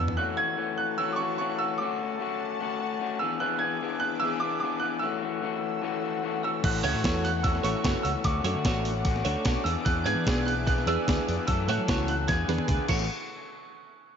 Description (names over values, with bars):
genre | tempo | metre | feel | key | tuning
indie rock | 149 BPM | 4/4 | straight | A major | A4 = 441 Hz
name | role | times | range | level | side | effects
bright upright piano | melody | 0.0-13.1 s | C#6 to C#7 | -31 LUFS | right 3 dB | slapback echo
lush unison pad | sustained chords | 0.0-13.1 s | C#4 to E6 | -39 LUFS | right 1 dB | chorus
electric guitar through a small old amp | riff | 0.0-13.1 s | E3 to A4 | -31 LUFS | left 9 dB | slapback echo
twelve-string electric guitar | riff | 0.0-0.2, 6.8-13.1 s | E3 to D5 | -33 LUFS | right 6 dB | wide subtle chorus, slapback echo
fingered electric bass | bass | 0.0-0.2, 6.6-13.1 s | F#1 to F#3 | -30 LUFS | equal | none
crisp 8-bit digital drum machine | drums | 0.1-0.2, 6.6-13.0 s | crash cymbal, hi-hat, kick drum, snare drum, toms | -29 LUFS | equal | overdrive
glockenspiel with soft plastic mallets | second line | 6.4-13.1 s | C#6 to G#6 | -42 LUFS | right 5 dB | none
room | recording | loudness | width
moderate lush hall reverb, RT60 2.2 s | big arena sound, nothing above 7.6 kHz | -25 LUFS | side -7 dB against mid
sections
0.2-13.1 A section; 13.1-14.2 B section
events
drum fill 0.0, 12.3-13.1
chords
0.2 A6; 1.8 Dmaj7; 3.2 E7; 5.0 F#m7; 6.6 A6; 8.3 Dmaj7; 9.7 E7; 11.5 F#m7; 12.3 E7; 12.9 A6; 13.1 N.C.